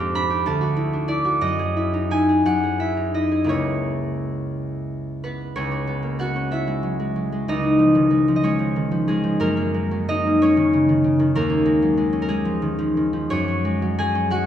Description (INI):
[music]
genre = classical, solo harp piece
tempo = 56-65 BPM (dotted quarters)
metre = 6/8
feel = rubato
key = C# dorian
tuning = A4 = 438 Hz
[part]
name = concert harp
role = solo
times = 0.0-14.5 s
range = C#2 to B5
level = -19 LUFS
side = equal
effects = none
[sound]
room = moderate recital hall reverb, RT60 1.4 s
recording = recorded in a church or concert hall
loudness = -19 LUFS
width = side -10 dB against mid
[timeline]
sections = 0.0-5.6 A section; 5.6-14.5 A section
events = none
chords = 0.5 Dadd9; 1.4 F#m9; 3.5 C#m6; 5.6 C#m7; 7.5 D#m11/C#; 9.4 F#69; 11.3 D#m11; 13.3 F#sus2